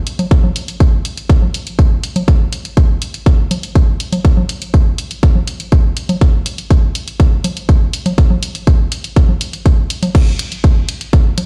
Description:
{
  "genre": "techno",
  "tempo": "122 BPM",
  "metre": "4/4",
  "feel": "straight",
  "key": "none",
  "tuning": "none",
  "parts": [
    { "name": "punchy analog drum machine", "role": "drums", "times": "0.1-11.5 s", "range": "congas, crash cymbal, hi-hat", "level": "-23 LUFS", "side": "equal", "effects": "studio reverb" },
    { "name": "electronic kick drum", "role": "drums", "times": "0.3-11.2 s", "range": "none", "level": "-13 LUFS", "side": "equal", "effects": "studio reverb" }
  ],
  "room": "little or no reverb",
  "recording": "played on a big sound system in a bare room, stone room reverb",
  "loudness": "-14 LUFS",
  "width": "mono",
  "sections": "0.0-11.5 A section",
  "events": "none",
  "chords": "none"
}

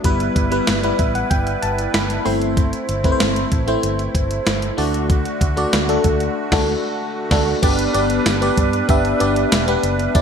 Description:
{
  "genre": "1980s-style pop",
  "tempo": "95 BPM",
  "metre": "4/4",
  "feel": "straight",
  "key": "G major",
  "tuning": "A4 = 440 Hz",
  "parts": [
    { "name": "FM electric piano", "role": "accompaniment", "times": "0.0-10.2 s", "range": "G3 to C6", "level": "-19 LUFS", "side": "left 1 dB", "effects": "chorus, phaser, shimmer reverb" },
    { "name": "musette accordion", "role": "sustained chords", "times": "0.0-10.2 s", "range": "D3 to B4", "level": "-26 LUFS", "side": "right 3 dB", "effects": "shimmer reverb" },
    { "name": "vintage muted fingered electric bass", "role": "bass", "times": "0.0-10.2 s", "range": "E1 to G2", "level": "-24 LUFS", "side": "equal", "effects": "none" },
    { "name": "gated 80s digital drum machine", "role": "drums", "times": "0.0-10.2 s", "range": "crash cymbal, hi-hat, kick drum, snare drum, tambourine", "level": "-20 LUFS", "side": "equal", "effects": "gated reverb, gated reverb snare" }
  ],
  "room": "moderate plate reverb, RT60 2.0 s",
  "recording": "bright 1980s-style digital production",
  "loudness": "-16 LUFS",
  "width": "side -7 dB against mid",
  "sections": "0.0-7.6 A section; 7.6-10.2 B section",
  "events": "FM electric piano fill 0.7-2.6; band accent 6.4-7.6",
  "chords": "0.0 Em/G; 2.3 Am/G; 4.8 D; 7.6 G"
}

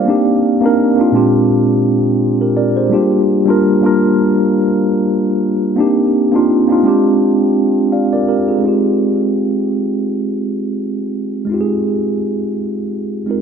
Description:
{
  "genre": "R&B",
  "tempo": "84 BPM",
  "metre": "4/4",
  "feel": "swing 56% on 16ths",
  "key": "F dorian",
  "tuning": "A4 = 442 Hz",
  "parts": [
    { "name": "mellow tine electric piano", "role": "solo", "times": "0.0-13.4 s", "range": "Bb2 to F5", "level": "-12 LUFS", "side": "equal", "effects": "medium stereo tremolo, diffuse ambient delay" }
  ],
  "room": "wet plate reverb, RT60 2.7 s",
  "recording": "dreamy mix soaked in reverb",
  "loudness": "-12 LUFS",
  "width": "side -7 dB against mid",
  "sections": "0.0-8.6 A section; 8.6-13.4 B section",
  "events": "none",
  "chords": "0.1 Cm7; 1.1 Bb13; 2.9 Gm7; 5.8 Cm7; 6.8 Fm69; 8.6 Fm9"
}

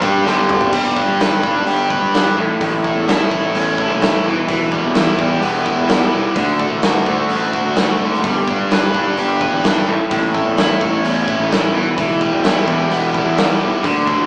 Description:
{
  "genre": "classic rock",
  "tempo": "128 BPM",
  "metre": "4/4",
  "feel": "straight",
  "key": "G lydian",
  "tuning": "A4 = 441 Hz",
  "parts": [
    { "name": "crunchy overdriven guitar", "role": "riff", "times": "0.0-14.3 s", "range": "E2 to G4", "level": "-25 LUFS", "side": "equal", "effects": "none" },
    { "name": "raw garage guitar", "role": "riff", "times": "0.0-14.3 s", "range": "G2 to B4", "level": "-20 LUFS", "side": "equal", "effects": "overdrive" },
    { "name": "fuzz picked electric bass", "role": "bass", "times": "0.0-14.3 s", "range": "E1 to G2", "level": "-25 LUFS", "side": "equal", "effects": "overdrive" },
    { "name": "big rock drum kit", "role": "drums", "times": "0.0-14.2 s", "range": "crash cymbal, hi-hat, kick drum, ride cymbal, snare drum, toms", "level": "-22 LUFS", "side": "equal", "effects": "none" }
  ],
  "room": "moderate large studio reverb, RT60 1.2 s",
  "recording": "band playing live in one room, small speaker sound",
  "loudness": "-16 LUFS",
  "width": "mono",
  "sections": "0.7-14.3 A section",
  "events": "drum fill 0.3-0.7",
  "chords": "0.0 G5; 0.7 G; 2.4 A; 4.3 Em; 6.4 D; 8.2 G; 9.9 A; 11.7 Em"
}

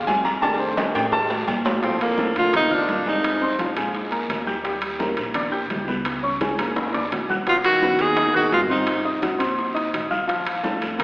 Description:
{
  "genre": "Afro-Cuban jazz",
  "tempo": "170 BPM",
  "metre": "4/4",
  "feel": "straight",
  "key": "unclear",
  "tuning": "A4 = 441 Hz",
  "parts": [
    { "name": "warm concert grand piano", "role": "accompaniment", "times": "0.0-11.0 s", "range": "Eb3 to G6", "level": "-24 LUFS", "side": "equal", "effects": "none" },
    { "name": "upright bass", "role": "bass", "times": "0.0-11.0 s", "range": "G#1 to Bb2", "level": "-35 LUFS", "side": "equal", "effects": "none" },
    { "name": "congas", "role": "percussion", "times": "0.1-11.0 s", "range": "none", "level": "-33 LUFS", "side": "equal", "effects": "none" },
    { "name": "cowbell and bongos", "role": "percussion", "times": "0.1-11.0 s", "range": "none", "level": "-30 LUFS", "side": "left 1 dB", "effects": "none" },
    { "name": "guiro", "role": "percussion", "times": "0.1-11.0 s", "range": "none", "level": "-35 LUFS", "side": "right 1 dB", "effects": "none" },
    { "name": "timbales and agogo bells", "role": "percussion", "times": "0.1-11.0 s", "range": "none", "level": "-28 LUFS", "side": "right 1 dB", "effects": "none" },
    { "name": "bright tenor saxophone", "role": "melody", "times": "1.8-3.6, 7.5-9.0 s", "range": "Bb3 to G#4", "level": "-20 LUFS", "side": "equal", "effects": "none" },
    { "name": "mellow trombone", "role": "second line", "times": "1.8-3.6, 7.5-9.0 s", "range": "F2 to D#3", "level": "-30 LUFS", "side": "equal", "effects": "none" }
  ],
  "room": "wet concert hall reverb, RT60 2.1 s",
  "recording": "recorded in a church or concert hall, AM radio sound",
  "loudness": "-19 LUFS",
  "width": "side -24 dB against mid",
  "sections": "0.0-1.8 A section; 1.8-11.0 B section",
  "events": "grand piano solo 0.0-1.8; drum fill 0.8-1.8, 6.8-7.5",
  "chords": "0.4 F13; 1.8 Bbmaj7; 3.2 Fm7; 3.9 Ebadd11/Bb; 4.6 Ebmaj7; 6.1 Db5; 6.8 Gbaug; 7.5 B6; 8.9 Ab9; 10.3 Bb5"
}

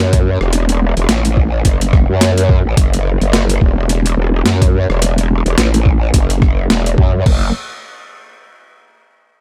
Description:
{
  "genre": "glitch hop",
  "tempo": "107 BPM",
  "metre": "4/4",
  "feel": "swing 58% on 16ths",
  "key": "F# minor",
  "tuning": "A4 = 441 Hz",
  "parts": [
    { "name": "growl bass", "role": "bass", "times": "0.0-7.5 s", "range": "E1 to F#2", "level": "-16 LUFS", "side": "equal", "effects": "chorus" },
    { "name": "boom bap sampler-style drum kit", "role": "drums", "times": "0.1-7.4 s", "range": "crash cymbal, hi-hat, rim click, snare drum", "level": "-21 LUFS", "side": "equal", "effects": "overdrive" },
    { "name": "electronic kick drum", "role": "drums", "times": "0.1-7.4 s", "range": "none", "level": "-15 LUFS", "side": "equal", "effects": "overdrive" }
  ],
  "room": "little or no reverb",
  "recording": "none",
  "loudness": "-14 LUFS",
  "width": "mono",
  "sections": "0.0-7.3 A section; 7.3-9.4 B section",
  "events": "none",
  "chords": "none"
}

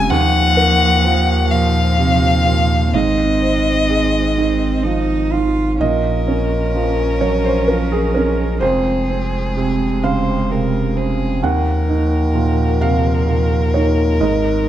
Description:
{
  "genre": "neoclassical piano and strings",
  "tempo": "43 BPM (dotted quarters)",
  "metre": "6/8",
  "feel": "rubato",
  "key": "Eb dorian",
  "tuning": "A4 = 440 Hz",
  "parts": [
    { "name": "rich violin", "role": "melody", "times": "0.0-14.7 s", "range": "Ab4 to Ab5", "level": "-20 LUFS", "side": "left 4 dB", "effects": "none" },
    { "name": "rich cello", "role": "second line", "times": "0.0-14.7 s", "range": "Eb3 to F4", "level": "-24 LUFS", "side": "right 3 dB", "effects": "none" },
    { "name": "felt-muted upright piano", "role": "accompaniment", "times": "0.0-14.7 s", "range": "Eb2 to Gb5", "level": "-18 LUFS", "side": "right 3 dB", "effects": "none" },
    { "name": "saturated sub bass", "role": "bass", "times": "0.0-14.7 s", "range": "F1 to Eb2", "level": "-19 LUFS", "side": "equal", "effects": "none" }
  ],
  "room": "light reverb",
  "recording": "none",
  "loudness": "-14 LUFS",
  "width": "side -11 dB against mid",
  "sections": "0.0-5.8 A section; 5.8-14.7 B section",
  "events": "none",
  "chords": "0.1 Ebmadd9; 2.9 Ab; 5.8 Bbm; 8.6 Fm; 11.4 Ebmadd9"
}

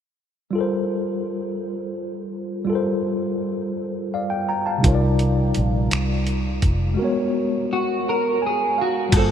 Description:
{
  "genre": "slow six-eight R&B",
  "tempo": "56 BPM (dotted quarters)",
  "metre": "6/8",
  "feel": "straight",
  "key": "G minor",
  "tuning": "A4 = 440 Hz",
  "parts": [
    { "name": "tine electric piano", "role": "accompaniment", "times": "0.5-9.3 s", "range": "C3 to Bb5", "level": "-22 LUFS", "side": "left 1 dB", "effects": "overdrive, medium stereo tremolo" },
    { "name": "vintage muted fingered electric bass", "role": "bass", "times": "4.8-9.3 s", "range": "F1 to C2", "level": "-21 LUFS", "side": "equal", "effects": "none" },
    { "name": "dusty soul sampler-style drum kit", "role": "drums", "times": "4.8-9.3 s", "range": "crash cymbal, finger snaps, hi-hat, kick drum", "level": "-22 LUFS", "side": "equal", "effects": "none" },
    { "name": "electric guitar at the edge of break-up", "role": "melody", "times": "7.7-9.3 s", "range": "Gb4 to Bb4", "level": "-20 LUFS", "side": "right 1 dB", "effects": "analog chorus" }
  ],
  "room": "wet huge ambient reverb, RT60 7.2 s",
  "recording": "dreamy mix soaked in reverb",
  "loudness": "-20 LUFS",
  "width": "side -8 dB against mid",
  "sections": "0.6-9.1 A section",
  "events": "tine electric piano fill 8.1-9.1",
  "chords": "0.6 Gm11; 4.8 Cm11; 7.0 Abm11"
}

